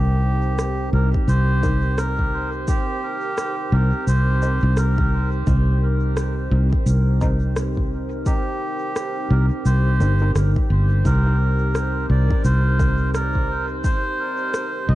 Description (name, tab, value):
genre	ambient dub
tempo	86 BPM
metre	4/4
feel	swing 60% on 16ths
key	C minor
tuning	A4 = 438 Hz
part	melodica	melody	0.0-14.9 s	G4 to Eb5	-27 LUFS	right 2 dB	cassette tape, dub echo
part	deep dark ambient pad	sustained chords	0.0-14.9 s	C4 to C5	-30 LUFS	equal	chorus, built-in reverb, cassette tape
part	fingered electric bass	bass	0.0-14.9 s	G1 to C2	-18 LUFS	equal	tube saturation
part	electronic rim click and shaker	drums	0.6-14.7 s	none	-30 LUFS	equal	cassette tape, dub echo
part	electronic kick drum	drums	1.1-14.0 s	none	-22 LUFS	equal	cassette tape
part	filtered dub chord stab	stabs	1.6-13.0 s	C4 to Bb4	-36 LUFS	left 2 dB	none
room	little or no reverb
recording	home recording on cassette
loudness	-18 LUFS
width	side -16 dB against mid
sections	0.0-14.9 A section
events	none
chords	0.0 Cm7